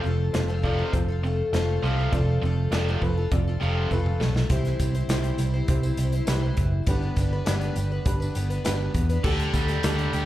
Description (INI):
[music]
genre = folk rock and heartland rock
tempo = 101 BPM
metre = 4/4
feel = straight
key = unclear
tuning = A4 = 439 Hz
[part]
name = dark baby grand piano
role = accompaniment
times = 0.0-10.2 s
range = D4 to D5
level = -34 LUFS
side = right 1 dB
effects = slapback echo
[part]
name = picked plugged-in twelve-string acoustic guitar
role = accompaniment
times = 0.0-10.3 s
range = C3 to C5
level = -32 LUFS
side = left 4 dB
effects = slapback echo
[part]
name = biting overdriven guitar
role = riff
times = 0.0-4.5, 9.2-10.3 s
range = F2 to G4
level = -30 LUFS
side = right 1 dB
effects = slapback echo
[part]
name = fingered electric bass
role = bass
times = 0.0-10.3 s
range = F1 to E2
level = -24 LUFS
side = right 1 dB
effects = none
[part]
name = natural country drum kit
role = drums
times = 0.3-10.3 s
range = crash cymbal, hi-hat, kick drum, snare drum, toms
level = -28 LUFS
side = equal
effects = none
[part]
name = tambourine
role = percussion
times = 4.7-10.1 s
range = none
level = -45 LUFS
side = right 2 dB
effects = none
[sound]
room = small room ambience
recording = live gig heard through the venue's PA, club reverb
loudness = -22 LUFS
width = side -14 dB against mid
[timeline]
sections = 0.0-4.5 A section; 4.5-10.3 B section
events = drum fill 3.9-4.5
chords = 0.0 F; 4.5 C; 6.9 G; 9.3 Dsus4